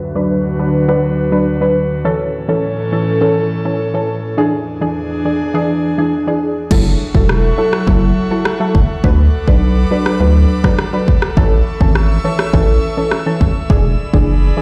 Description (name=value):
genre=dancehall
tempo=103 BPM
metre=4/4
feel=straight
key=A major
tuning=A4 = 445 Hz
part: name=airy breathy pad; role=sustained chords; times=0.0-14.6 s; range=D2 to E6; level=-23 LUFS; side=equal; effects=chorus, sidechain pumping, low-pass filter
part: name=punchy chord stab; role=accompaniment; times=0.2-14.6 s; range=E3 to B4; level=-19 LUFS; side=equal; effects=chorus, low-pass filter
part: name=round analog bass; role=bass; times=6.7-14.5 s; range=E1 to D2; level=-15 LUFS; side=equal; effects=none
part: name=afro-pop drum kit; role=drums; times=6.7-14.3 s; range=crash cymbal, kick drum, rim click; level=-16 LUFS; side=equal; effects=none
room=light reverb, digital ambience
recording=played on a big sound system in a bare room, stone room reverb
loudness=-15 LUFS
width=mono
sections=0.0-6.7 A section; 6.7-14.6 B section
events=filter sweep 0.0-6.7; hi-hats muted 6.7-14.6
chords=0.0 D6; 2.0 A; 4.4 E7; 6.7 F#m7; 9.0 D6; 11.4 A; 13.7 E7